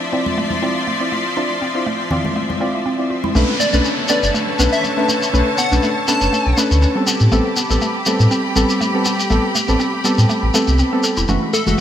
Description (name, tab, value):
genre	deep house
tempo	121 BPM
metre	4/4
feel	swing 54% on 16ths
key	B minor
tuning	A4 = 440 Hz
part	clear symphonic string section	texture	0.0-11.8 s	D3 to C6	-22 LUFS	equal	none
part	mallet-like synth pluck	arpeggios	0.1-11.8 s	A3 to A4	-25 LUFS	right 2 dB	chorus, cassette tape, digital delay
part	deep mellow chord stab	stabs	0.1-11.8 s	E3 to D5	-20 LUFS	equal	chorus, digital delay
part	congas	percussion	0.3-3.3 s	none	-25 LUFS	left 3 dB	none
part	sub bass with octave	bass	3.4-11.7 s	E1 to A2	-16 LUFS	equal	none
part	shekere	percussion	3.4-11.8 s	none	-22 LUFS	left 2 dB	none
part	downlifter	sound effects	3.4-7.3 s	none	-26 LUFS	left 1 dB	none
part	plucky unison lead	melody	3.6-6.6, 11.5-11.7 s	A4 to A5	-22 LUFS	equal	ping-pong delay
room	moderate lush hall reverb, RT60 2.7 s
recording	bright 1980s-style digital production, vinyl crackle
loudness	-14 LUFS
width	side -10 dB against mid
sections	0.0-3.4 A section; 3.4-11.8 B section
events	drop 3.4-11.8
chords	0.0 Dm9; 3.4 Bm9; 7.1 Am9; 11.3 F#m9